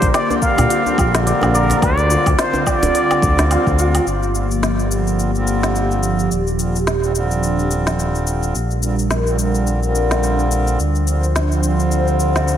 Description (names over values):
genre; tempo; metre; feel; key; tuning
organic downtempo; 107 BPM; 4/4; swing 57% on 16ths; G minor pentatonic; A4 = 440 Hz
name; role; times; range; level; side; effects
trumpet with plunger mute; melody; 0.0-3.7 s; Bb4 to F5; -21 LUFS; equal; tape echo
airy breathy pad; sustained chords; 0.0-12.6 s; D3 to C5; -21 LUFS; equal; chorus, phaser, sidechain pumping
santur; arpeggios; 0.0-7.2 s; F4 to D5; -24 LUFS; left 1 dB; analog delay
smooth synth bass; bass; 0.0-12.6 s; D1 to Bb2; -19 LUFS; equal; none
electronic kick drum; drums; 0.0-3.8 s; none; -19 LUFS; equal; overdrive
organic electronic drum kit; drums; 0.0-12.6 s; cabasa, hi-hat, snare drum, woodblock; -24 LUFS; left 1 dB; none
hand-pumped harmonium; accompaniment; 0.3-12.6 s; D3 to F4; -23 LUFS; right 2 dB; sidechain pumping, analog delay
djembe; percussion; 0.3-3.9 s; none; -25 LUFS; right 1 dB; none
room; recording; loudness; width
moderate lush hall reverb, RT60 2.0 s; dreamy mix soaked in reverb; -15 LUFS; side -10 dB against mid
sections
0.0-4.1 A section; 4.1-12.6 B section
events
filter sweep on analog synth pad 4.1-12.6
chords
0.0 Bb6; 1.8 Dm7; 4.1 Gm7; 6.3 Ebmaj9; 8.6 Bb6; 10.8 Dm7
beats
0.14 0.70 1.26 | 1.82 2.39 2.95 3.51 | 4.07 4.63 5.19 5.75 | 6.31 6.87 7.43 7.99 | 8.55 9.12 9.68 10.24 | 10.80 11.36 11.92 12.48